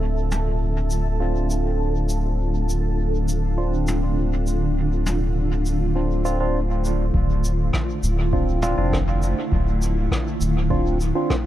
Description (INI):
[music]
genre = ambient dub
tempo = 101 BPM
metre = 4/4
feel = straight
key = D minor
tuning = A4 = 439 Hz
[part]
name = granular cloud pad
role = sustained chords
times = 0.0-11.5 s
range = D3 to E5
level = -27 LUFS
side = right 1 dB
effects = built-in reverb
[part]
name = bright tine electric piano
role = stabs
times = 0.0-11.3 s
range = C4 to F4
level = -28 LUFS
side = right 1 dB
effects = phaser, low-pass filter, dub echo
[part]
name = soft dub sub bass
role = bass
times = 0.0-11.1 s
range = D1 to F1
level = -22 LUFS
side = equal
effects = tube saturation
[part]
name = bubbling stepped-filter texture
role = texture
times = 0.0-7.2 s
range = A4 to A5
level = -33 LUFS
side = right 3 dB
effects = chorus, built-in reverb
[part]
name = jazz brush drum kit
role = drums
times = 0.3-11.4 s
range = rim click, shaker, toms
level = -33 LUFS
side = equal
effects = dub echo
[part]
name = electronic kick drum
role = drums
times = 7.1-11.4 s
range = none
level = -25 LUFS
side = equal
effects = none
[sound]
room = studio reverb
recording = dark, warm production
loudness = -20 LUFS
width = side -13 dB against mid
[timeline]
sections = 0.0-7.1 A section; 7.1-11.5 B section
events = filter sweep on tine electric piano 0.0-7.1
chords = 0.0 Dm7